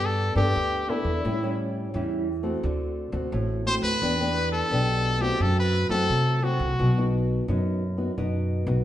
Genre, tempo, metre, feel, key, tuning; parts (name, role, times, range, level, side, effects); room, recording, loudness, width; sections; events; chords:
samba and choro; 87 BPM; 4/4; straight; E minor; A4 = 439 Hz
brilliant trumpet; melody; 0.0-7.1 s; E4 to C5; -26 LUFS; left 1 dB
nylon-string guitar; accompaniment; 0.0-8.8 s; F#2 to A4; -28 LUFS; equal
upright bass; bass; 0.0-8.8 s; A1 to C3; -26 LUFS; equal
wet stone room reverb, RT60 1.3 s; band playing live in one room, nothing above 10.8 kHz; -23 LUFS; side -12 dB against mid
0.0-8.8 A section
0.0 Gadd9; 1.2 A7; 2.6 D7; 4.0 Em7; 5.4 F#dim; 6.8 B